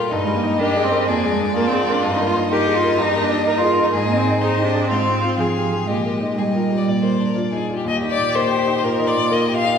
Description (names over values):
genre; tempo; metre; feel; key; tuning
quick classical-period movement for piano quartet; 125 BPM; 4/4; straight; Eb major; A4 = 441 Hz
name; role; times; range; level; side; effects
rich violin; melody; 0.0-9.8 s; Eb4 to F5; -23 LUFS; left 4 dB; none
warm violin; second line; 0.0-9.8 s; G4 to F5; -26 LUFS; left 2 dB; none
bright baby grand piano; accompaniment; 0.0-9.8 s; Eb2 to Bb4; -21 LUFS; equal; none
rich cello; second line; 0.2-9.8 s; F3 to G4; -21 LUFS; right 2 dB; none
room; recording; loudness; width
wet scoring stage reverb, RT60 1.6 s; heard from further back in the room; -16 LUFS; side -7 dB against mid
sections
0.0-7.9 A section; 7.9-9.8 B section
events
none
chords
0.1 Eb/G; 1.1 Bb7/F; 2.0 Eb/G; 3.9 Ab; 4.9 Fm/Ab; 5.9 Eb/Bb; 6.9 Bb; 7.9 Eb